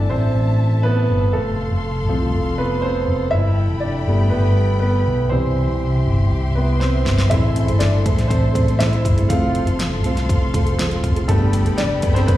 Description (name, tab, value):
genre	piano-driven pop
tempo	121 BPM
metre	4/4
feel	straight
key	unclear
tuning	A4 = 439 Hz
part	warm concert grand piano	accompaniment	0.0-12.4 s	E3 to F5	-22 LUFS	equal	none
part	warm symphonic string section	sustained chords	0.0-12.4 s	G4 to C6	-30 LUFS	left 4 dB	none
part	picked electric bass	bass	0.0-12.4 s	F1 to C2	-18 LUFS	equal	none
part	pop drum kit	drums	6.8-12.4 s	hi-hat, kick drum, snare drum	-21 LUFS	equal	none
part	fingerpicked steel-string acoustic guitar	riff	7.3-12.4 s	A2 to A4	-25 LUFS	right 5 dB	slapback echo
room	light reverb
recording	live gig heard through the venue's PA, recital hall reverb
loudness	-16 LUFS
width	side -14 dB against mid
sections	0.0-12.4 A section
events	grand piano solo 0.0-12.4; drum fill 6.8-7.3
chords	0.0 Am; 1.3 F; 3.3 Gadd9; 5.3 C; 7.3 Am; 9.3 F; 11.3 Gadd9